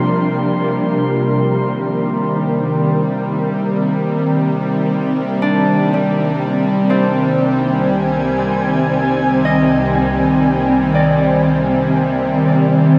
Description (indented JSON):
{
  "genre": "ambient",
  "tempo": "free time",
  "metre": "none",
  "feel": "none",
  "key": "C minor",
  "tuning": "A4 = 439 Hz",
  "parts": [
    { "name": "glassy FM pad", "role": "sustained chords", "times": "0.0-13.0 s", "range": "C2 to Ab5", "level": "-18 LUFS", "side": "equal", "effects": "ensemble chorus, built-in reverb" },
    { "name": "Celtic harp", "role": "arpeggios", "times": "0.0-13.0 s", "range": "G3 to Eb5", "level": "-24 LUFS", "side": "equal", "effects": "delay" },
    { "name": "bowed-like drone", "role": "drone", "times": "0.0-13.0 s", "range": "C3 to G3", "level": "-22 LUFS", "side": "equal", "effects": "built-in reverb" },
    { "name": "drifting glass-harmonics texture", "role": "texture", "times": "0.0-1.0 s", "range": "C6", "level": "-32 LUFS", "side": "equal", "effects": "chorus, built-in reverb" }
  ],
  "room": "wet huge ambient reverb, RT60 7.3 s",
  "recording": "none",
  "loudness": "-16 LUFS",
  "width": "mono",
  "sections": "0.0-1.0 A section; 1.0-13.0 B section",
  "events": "none",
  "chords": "0.0 Gm7/C; 1.0 Cm7; 6.9 Abadd9/C",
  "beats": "free time"
}